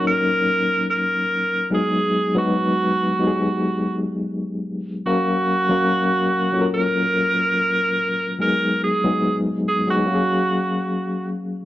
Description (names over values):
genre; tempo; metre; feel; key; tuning
soul; 72 BPM; 4/4; swing 54% on 16ths; F# major; A4 = 440 Hz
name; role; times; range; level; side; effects
bright alto saxophone; melody; 0.0-11.3 s; F#4 to A#4; -20 LUFS; right 2 dB; none
overdriven reed electric piano; accompaniment; 0.0-11.7 s; F#3 to E#5; -21 LUFS; left 2 dB; fast tremolo
room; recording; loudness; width
light reverb, small room ambience; none; -18 LUFS; side -14 dB against mid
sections
0.0-11.7 A section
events
none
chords
0.0 D#m7; 1.7 G#m7; 5.1 F#maj7; 8.4 G#m7; 10.1 F#maj9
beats
0.04 0.88 | 1.72 2.55 3.39 4.22 | 5.06 5.89 6.73 7.56 | 8.40 9.23 10.07 10.90